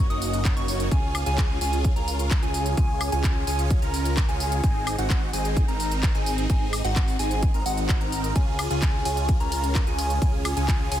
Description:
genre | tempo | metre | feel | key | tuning
EDM, festival progressive house | 129 BPM | 4/4 | straight | Db major | A4 = 440 Hz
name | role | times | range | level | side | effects
plucky unison lead | arpeggios | 0.0-11.0 s | Gb5 to Eb6 | -31 LUFS | equal | sidechain pumping, dub echo
big supersaw lead | riff | 0.0-11.0 s | Bb3 to Eb5 | -29 LUFS | right 1 dB | phaser, sidechain pumping, dub echo
fat analog bass | bass | 0.0-11.0 s | Gb1 to Db2 | -28 LUFS | equal | sidechain pumping
house drum kit | drums | 0.1-11.0 s | handclaps, hi-hat, ride cymbal, woodblock | -32 LUFS | equal | small room ambience
electronic kick drum | drums | 0.5-10.8 s | none | -23 LUFS | equal | small room ambience
room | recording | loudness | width
light reverb, digital ambience | dense, heavily limited modern master | -21 LUFS | side -11 dB against mid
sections
0.0-11.0 A section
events
none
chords
0.0 Gb6; 0.9 Db; 4.6 Ab; 8.4 Db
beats
0.45 | 0.92 1.38 1.84 2.31 | 2.78 3.24 3.71 4.17 | 4.64 5.10 5.57 6.03 | 6.50 6.96 7.43 7.89 | 8.36 8.82 9.29 9.75 | 10.22 10.68

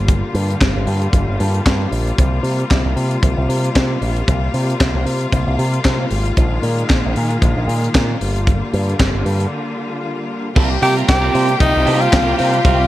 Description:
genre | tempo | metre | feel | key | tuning
disco | 114 BPM | 4/4 | swing 56% on 16ths | unclear | A4 = 437 Hz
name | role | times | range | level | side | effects
rich studio string section | sustained chords | 0.0-12.9 s | C3 to F4 | -23 LUFS | left 2 dB | none
picked electric bass with an envelope filter | bass | 0.0-12.8 s | G1 to C3 | -18 LUFS | equal | none
tight funk drum kit | drums | 0.1-12.8 s | crash cymbal, handclaps, hi-hat, kick drum, snare drum | -18 LUFS | equal | gated reverb
clear studio string section | second line | 10.6-12.9 s | G4 to G5 | -22 LUFS | equal | none
electric guitar at the edge of break-up | accompaniment | 10.6-12.8 s | G3 to C5 | -22 LUFS | right 6 dB | spring reverb
breathy tenor saxophone | melody | 10.8-12.9 s | Eb4 to G4 | -16 LUFS | equal | none
room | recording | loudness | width
small room ambience | none | -14 LUFS | side -15 dB against mid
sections
0.0-10.6 A section; 10.6-12.9 B section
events
break 9.5-10.6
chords
0.0 Gm7; 2.2 C7sus4; 6.4 Bb7sus4; 8.2 Gm7; 10.6 C7sus4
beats
| 0.08 0.61 1.13 1.66 | 2.18 2.71 3.23 3.75 | 4.28 4.80 5.33 5.85 | 6.38 6.90 7.42 7.95 | 8.47 8.99 9.52 10.04 | 10.56 11.09 11.61 12.13 | 12.65

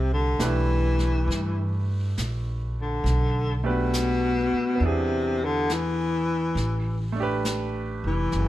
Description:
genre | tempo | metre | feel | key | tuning
jazz ballad | 68 BPM | 4/4 | swing 69% on 8ths | A minor | A4 = 439 Hz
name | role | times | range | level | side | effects
breathy baritone saxophone | melody | 0.0-8.5 s | B2 to E3 | -25 LUFS | left 2 dB | plate reverb
upright bass | bass | 0.0-8.5 s | F1 to G2 | -26 LUFS | equal | none
clear baby grand piano | accompaniment | 0.4-8.4 s | A3 to B4 | -31 LUFS | right 4 dB | none
jazz brush drum kit | drums | 0.4-8.5 s | brushed snare drum, hi-hat, snare drum | -35 LUFS | left 1 dB | none
room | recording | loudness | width
light reverb | none | -23 LUFS | side -14 dB against mid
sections
0.0-8.5 A section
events
baritone saxophone solo 0.0-8.5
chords
0.0 Cmaj7 (rootless); 3.1 Gadd9/B; 4.8 E7; 6.6 Asus2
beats
0.40 1.29 2.17 | 3.05 3.93 4.81 5.69 | 6.57 7.45 8.32

